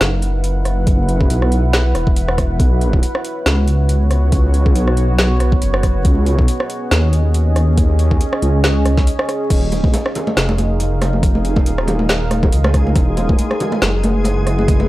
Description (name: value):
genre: deep dubstep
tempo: 139 BPM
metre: 4/4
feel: swing 56% on 16ths, half-time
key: unclear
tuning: A4 = 440 Hz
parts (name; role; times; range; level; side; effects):
- deep dark ambient pad; sustained chords; 0.0-14.9 s; B3 to Gb5; -23 LUFS; right 1 dB; chorus, built-in reverb
- dark detuned saw bass; bass; 0.0-14.9 s; Eb1 to Eb2; -15 LUFS; equal; none
- garage drum kit; drums; 0.0-14.8 s; crash cymbal, hi-hat, rim click, snare drum; -21 LUFS; equal; overdrive
- electronic kick drum; drums; 0.9-14.8 s; none; -15 LUFS; equal; overdrive
- backwards swelling texture; texture; 10.5-14.9 s; Ab3 to Ab4; -25 LUFS; left 1 dB; built-in reverb
- congas; percussion; 9.7-14.9 s; none; -22 LUFS; equal; dub echo
room: little or no reverb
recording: dry, gritty hardware recording, vinyl crackle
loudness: -13 LUFS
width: side -17 dB against mid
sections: 0.0-14.9 A section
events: break 9.1-9.5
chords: 0.0 E5; 2.6 B5; 6.0 Db5; 9.5 Ebsus2; 13.0 E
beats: 0.01 0.44 | 0.87 1.30 1.73 2.17 | 2.60 3.03 3.46 3.89 | 4.32 4.75 5.19 5.62 | 6.05 6.48 6.91 7.34 | 7.78 8.21 8.64 9.07 | 9.50 9.94 10.37 10.80 | 11.23 11.66 12.09 12.53 | 12.96 13.39 13.82 14.25 | 14.68